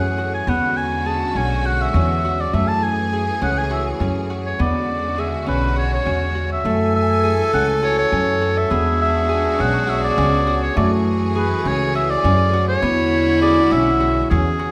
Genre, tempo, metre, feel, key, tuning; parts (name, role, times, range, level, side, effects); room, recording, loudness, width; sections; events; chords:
contemporary instrumental, chamber music in an uneven meter; 204 BPM (eighths); 7/8; straight; E mixolydian; A4 = 440 Hz
warm oboe; melody; 0.0-14.7 s; G#4 to A5; -24 LUFS; equal
clear symphonic string section; sustained chords; 0.0-14.7 s; C#3 to G#5; -30 LUFS; equal
Celtic harp; arpeggios; 0.0-14.7 s; A3 to G#4; -27 LUFS; equal
upright bass; bass; 0.0-14.7 s; B1 to F#2; -24 LUFS; equal
clear clarinet; second line; 6.7-14.6 s; E4 to A4; -23 LUFS; equal
moderate recital hall reverb, RT60 1.3 s; -19 LUFS; mono
0.0-14.7 A section
0.5 E13; 2.5 F#m9; 4.6 E13; 6.7 F#m9; 8.7 E13; 10.8 F#m9; 12.8 E13